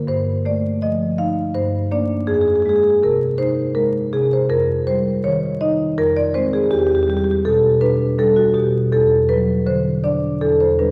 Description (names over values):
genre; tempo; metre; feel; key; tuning
classical, contemporary piece for solo marimba; 81 BPM; 3/4; rubato; E minor from 6.7 s; A4 = 439 Hz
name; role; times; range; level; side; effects
marimba with medium mallets; solo; 0.0-10.9 s; E2 to F5; -18 LUFS; equal; none
room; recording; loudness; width
wet scoring stage reverb, RT60 1.5 s; vinyl crackle; -18 LUFS; mono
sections
0.0-10.9 A section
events
none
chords
0.1 F9/G; 1.6 Bbadd9/G; 2.3 Fm7; 4.5 Ebadd9/F; 6.0 Ab/F; 6.7 Em7; 8.9 Dadd9/E; 10.4 G/E